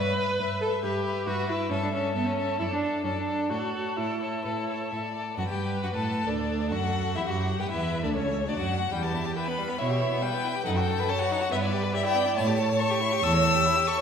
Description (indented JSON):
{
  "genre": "quick classical-period movement for string quartet",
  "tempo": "137 BPM",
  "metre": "4/4",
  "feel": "rubato",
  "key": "D major",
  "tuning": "A4 = 442 Hz",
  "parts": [
    { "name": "rich violin", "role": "melody", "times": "0.0-14.0 s", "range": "B4 to E6", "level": "-31 LUFS", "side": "left 6 dB", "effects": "none" },
    { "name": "rich violin", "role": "second line", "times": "0.0-14.0 s", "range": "G3 to C#5", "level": "-31 LUFS", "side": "left 2 dB", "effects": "none" },
    { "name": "rich viola", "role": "accompaniment", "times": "0.0-14.0 s", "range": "B3 to D5", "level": "-30 LUFS", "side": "right 2 dB", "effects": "none" },
    { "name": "rich cello", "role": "bass", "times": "0.0-13.6 s", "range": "C#2 to B2", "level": "-30 LUFS", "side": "right 2 dB", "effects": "none" }
  ],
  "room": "wet recital hall reverb, RT60 1.6 s",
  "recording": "recorded in a church or concert hall",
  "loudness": "-25 LUFS",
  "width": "side -7 dB against mid",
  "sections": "0.0-5.4 A section; 5.4-14.0 B section",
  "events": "none",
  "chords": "0.0 Em/G; 1.7 A5/G; 2.6 D/F#; 3.5 A; 5.4 D/F#; 7.2 Emadd9; 8.0 D; 8.9 Em; 10.7 B7/F# (rootless); 11.5 Em/G; 12.4 A7",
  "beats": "0.40 0.83 1.27 | 1.71 2.15 2.59 3.04 | 3.50 3.98 4.45 4.92 | 5.38 5.83 6.28 6.71 | 7.16 7.60 8.04 8.48 | 8.92 9.36 9.79 10.22 | 10.65 11.09 11.51 11.94 | 12.36 12.80 13.23 13.66"
}